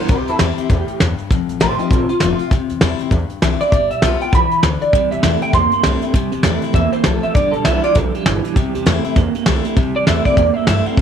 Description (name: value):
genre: rockabilly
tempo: 198 BPM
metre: 4/4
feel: swing 61% on 8ths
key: C major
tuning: A4 = 440 Hz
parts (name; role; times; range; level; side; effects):
- electric guitar through a small old amp; melody; 0.0-11.0 s; C4 to C6; -18 LUFS; right 2 dB; ensemble chorus, tape echo
- picked steel-string acoustic guitar; accompaniment; 0.0-11.0 s; F2 to F4; -22 LUFS; left 12 dB; none
- electric guitar through a small old amp; riff; 0.0-0.1, 4.9-11.0 s; F2 to Bb3; -22 LUFS; right 12 dB; tremolo
- upright bass; bass; 0.1-11.0 s; F1 to G2; -21 LUFS; equal; none
- soft brush drum kit; drums; 0.1-11.0 s; hi-hat, kick drum, snare drum; -17 LUFS; equal; none
room: little or no reverb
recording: 1960s-style stereo with parts hard left and right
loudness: -14 LUFS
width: side -8 dB against mid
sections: 0.1-9.8 A section; 9.8-11.0 B section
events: clean electric guitar solo 9.8-11.0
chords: 0.1 C; 1.3 F; 2.5 C; 3.7 G7; 4.9 C; 7.4 G7; 8.6 C